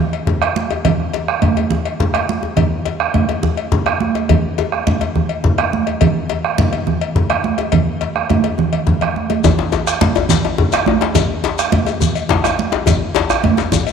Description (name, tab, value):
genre	west african traditional, West African drum ensemble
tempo	140 BPM (dotted quarters)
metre	12/8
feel	straight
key	none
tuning	none
part	cowbell	percussion	0.1-13.9 s	none	-24 LUFS	left 10 dB	none
part	djembe	percussion	0.1-13.9 s	none	-23 LUFS	left 6 dB	none
part	bombo	percussion	0.3-13.8 s	none	-18 LUFS	right 1 dB	none
part	congas	percussion	0.6-13.9 s	none	-19 LUFS	right 7 dB	none
part	djembe	percussion	9.4-13.9 s	none	-20 LUFS	left 8 dB	none
part	shekere	percussion	9.4-13.9 s	none	-24 LUFS	left 7 dB	none
room	moderate plate reverb, RT60 2.7 s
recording	1960s-style stereo with parts hard left and right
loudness	-14 LUFS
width	side -7 dB against mid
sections	0.0-9.4 A section; 9.4-13.9 B section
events	drum fill 8.7-9.4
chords	none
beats	0.42 | 0.85 1.28 1.71 2.14 | 2.57 3.00 3.43 3.86 | 4.29 4.72 5.15 5.58 | 6.01 6.44 6.87 7.30 | 7.73 8.16 8.59 9.02 | 9.44 9.87 10.30 10.73 | 11.15 11.58 12.01 12.44 | 12.87 13.29 13.72